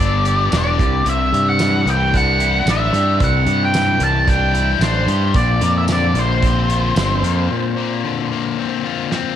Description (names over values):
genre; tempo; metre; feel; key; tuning
indie rock; 112 BPM; 4/4; straight; unclear; A4 = 440 Hz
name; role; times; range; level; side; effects
octave-fuzz lead guitar; melody; 0.0-9.1 s; C5 to A5; -19 LUFS; right 1 dB; distortion, cassette tape, tape echo
cranked stack guitar; riff; 0.0-9.4 s; Bb2 to G4; -21 LUFS; left 9 dB; overdrive, cassette tape
electric guitar through a small old amp; riff; 0.0-9.4 s; G2 to G4; -33 LUFS; right 12 dB; lush chorus, cassette tape
growling fingered electric bass; bass; 0.0-7.5 s; E1 to G2; -18 LUFS; right 1 dB; overdrive
loose indie drum kit; drums; 0.3-9.2 s; hi-hat, kick drum, snare drum, tambourine; -21 LUFS; right 2 dB; cassette tape
room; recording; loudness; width
little or no reverb; home recording on cassette; -14 LUFS; side -10 dB against mid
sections
0.0-9.4 A section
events
break 7.5-9.4; drum fill 9.1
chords
0.0 G; 0.8 Cadd9; 5.4 Bbadd9